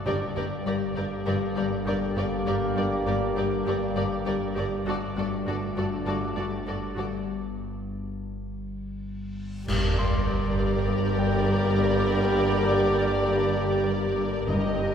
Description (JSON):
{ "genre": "cinematic, suspense film score", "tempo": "100 BPM", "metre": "4/4", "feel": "straight", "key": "G harmonic minor", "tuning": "A4 = 440 Hz", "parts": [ { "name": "bright trombone section", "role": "sustained chords", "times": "0.0-14.9 s", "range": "D3 to Bb3", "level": "-34 LUFS", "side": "right 3 dB", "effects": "none" }, { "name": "Celtic harp", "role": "riff", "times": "0.0-14.9 s", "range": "G2 to G3", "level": "-32 LUFS", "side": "left 5 dB", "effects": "none" }, { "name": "analog drone", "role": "drone", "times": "0.0-14.9 s", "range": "G1", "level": "-35 LUFS", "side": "left 1 dB", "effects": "chorus" }, { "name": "bright concert grand piano", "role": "texture", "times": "0.0-4.9, 10.0-14.5 s", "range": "D5 to D6", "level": "-39 LUFS", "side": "left 2 dB", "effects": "none" }, { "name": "muted studio violin section", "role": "melody", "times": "0.1-14.9 s", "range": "D5 to Eb5", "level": "-34 LUFS", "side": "left 2 dB", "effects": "none" }, { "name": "muted symphonic violin section", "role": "second line", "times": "0.1-14.9 s", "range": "A4 to Bb4", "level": "-35 LUFS", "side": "left 2 dB", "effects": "none" }, { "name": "muted symphonic viola section", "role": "accompaniment", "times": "0.1-14.9 s", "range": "F#4 to G4", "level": "-32 LUFS", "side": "right 2 dB", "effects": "none" }, { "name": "mellow French horn section", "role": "sustained chords", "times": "0.1-14.9 s", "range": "Bb3 to G4", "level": "-33 LUFS", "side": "left 2 dB", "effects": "none" }, { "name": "muted chamber cello section", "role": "bass", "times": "0.1-14.9 s", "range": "G2", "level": "-32 LUFS", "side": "right 3 dB", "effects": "none" }, { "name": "muted symphonic double bass section", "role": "bass", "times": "0.1-14.9 s", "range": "G1", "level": "-34 LUFS", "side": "right 2 dB", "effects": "none" }, { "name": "timpani", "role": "percussion", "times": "0.1-0.9, 14.5-14.9 s", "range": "G2", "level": "-34 LUFS", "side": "right 1 dB", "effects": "none" }, { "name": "reverse cymbal and sub drop", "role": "sound effects", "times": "9.7-12.1 s", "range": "none", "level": "-36 LUFS", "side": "equal", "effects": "none" }, { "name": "clash cymbals and concert bass drum", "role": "percussion", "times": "9.7-10.8 s", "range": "none", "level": "-30 LUFS", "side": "equal", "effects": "none" } ], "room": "wet church reverb, RT60 2.5 s", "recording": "heard from further back in the room", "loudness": "-24 LUFS", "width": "side -8 dB against mid", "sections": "0.0-9.7 A section; 9.7-14.9 B section", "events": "break 7.3-9.7; reverse cymbal 9.7; band accent 9.7-10.3; impact 9.7-12.1", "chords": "0.1 Gm; 4.9 D/G; 9.7 Gm" }